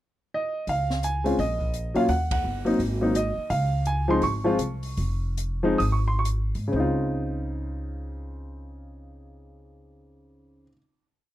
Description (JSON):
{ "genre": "jazz piano trio", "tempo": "119-170 BPM", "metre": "4/4", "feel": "swing 63% on 8ths", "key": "Db major", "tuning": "A4 = 440 Hz", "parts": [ { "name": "warm grand piano", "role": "melody", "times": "0.3-10.8 s", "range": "Db3 to Eb6", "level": "-25 LUFS", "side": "equal", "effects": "none" }, { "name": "upright bass", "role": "bass", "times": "0.7-10.6 s", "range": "F1 to Bb2", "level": "-28 LUFS", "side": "equal", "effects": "none" }, { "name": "open jazz drum kit", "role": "drums", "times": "0.7-6.6 s", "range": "hi-hat, kick drum, ride cymbal, snare drum", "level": "-35 LUFS", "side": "equal", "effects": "none" } ], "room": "small room ambience", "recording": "dry, close 1970s-style studio recording", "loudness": "-23 LUFS", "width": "side -14 dB against mid", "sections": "0.0-0.7 pickup bar; 0.7-6.7 A section; 6.7-10.7 final chord", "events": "band accent 2.3; slowing down 3.5-6.7", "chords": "0.0 N.C.; 0.7 Db; 1.4 Bb5; 2.1 Ebm; 2.8 Ab5; 3.5 Db; 6.7 Dbmaj9" }